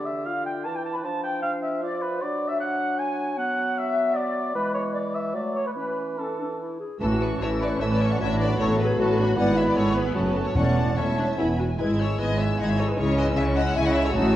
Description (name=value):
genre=quick classical-period movement for symphony orchestra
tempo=153 BPM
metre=3/4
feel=rubato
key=A major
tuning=A4 = 440 Hz
part: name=dark clarinet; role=second line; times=0.0-14.4 s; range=G#3 to G#4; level=-33 LUFS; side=left 2 dB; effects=none
part: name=mellow cor anglais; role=second line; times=0.0-14.4 s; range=A4 to A5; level=-30 LUFS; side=right 1 dB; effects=none
part: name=small flute group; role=second line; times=0.0-14.3 s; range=D4 to B5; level=-32 LUFS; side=left 2 dB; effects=none
part: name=warm bassoon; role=accompaniment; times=0.0-14.4 s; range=D3 to C#4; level=-32 LUFS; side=right 1 dB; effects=none
part: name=rich chamber violin section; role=melody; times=7.0-14.3 s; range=F#5 to G#6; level=-37 LUFS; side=left 3 dB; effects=none
part: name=rich studio violin section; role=second line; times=7.0-14.4 s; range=F#4 to G#5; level=-30 LUFS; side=left 2 dB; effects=none
part: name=rich chamber viola section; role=accompaniment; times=7.0-14.4 s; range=B3 to A4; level=-31 LUFS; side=left 1 dB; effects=none
part: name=dark French horn section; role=sustained chords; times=7.0-14.4 s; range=G#3 to F#4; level=-30 LUFS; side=left 2 dB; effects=none
part: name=clear chamber double bass section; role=bass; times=7.0-14.4 s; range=E1 to C#2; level=-27 LUFS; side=right 1 dB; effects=none
part: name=rich chamber cello section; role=bass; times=7.0-14.4 s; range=E2 to C#3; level=-26 LUFS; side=right 1 dB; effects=none
part: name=timpani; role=percussion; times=10.6-11.1 s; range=E2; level=-28 LUFS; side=equal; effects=none
room=moderate scoring stage reverb, RT60 1.6 s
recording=worn, warbling old tape, cassette tape, warbly pitch drift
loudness=-22 LUFS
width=side -13 dB against mid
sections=0.0-7.0 A section; 7.0-14.4 B section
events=none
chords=0.0 Dm; 1.0 Dm/F; 2.2 D/F#; 4.6 E; 5.3 D/F#; 5.8 A/E; 7.0 A; 8.2 Bm7/A; 9.4 E/G#; 10.2 F#m; 10.6 A/E; 11.4 E; 11.8 E/G#; 13.0 C#m